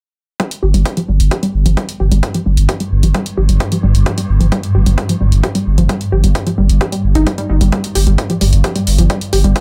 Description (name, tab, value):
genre	driving peak-time techno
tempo	131 BPM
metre	4/4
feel	straight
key	unclear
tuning	A4 = 441 Hz
part	warbly dusty pluck	riff	0.4-9.5 s	F3 to G4	-21 LUFS	equal	lush chorus, sidechain pumping, tape echo
part	swarming drone	drone	2.1-9.6 s	G2	-23 LUFS	equal	built-in reverb, sidechain pumping
part	electronic hi-hat	drums	0.4-9.6 s	none	-27 LUFS	equal	none
part	electronic kick drum	drums	0.4-9.6 s	none	-24 LUFS	equal	high-pass filter on kick, high-pass filter on room
part	saturated sub bass	bass	0.6-9.6 s	G1	-14 LUFS	equal	overdrive, sidechain pumping, low-pass filter
room	light reverb, digital ambience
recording	echo-heavy mix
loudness	-14 LUFS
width	mono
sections	0.4-9.6 A section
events	filter sweep on synth arpeggio sound 0.4-9.6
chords	none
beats	| 0.40 0.85 1.31 1.77 | 2.23 2.69 3.15 3.60 | 4.06 4.52 4.98 5.43 | 5.89 6.35 6.81 7.27 | 7.72 8.18 8.64 9.10 | 9.56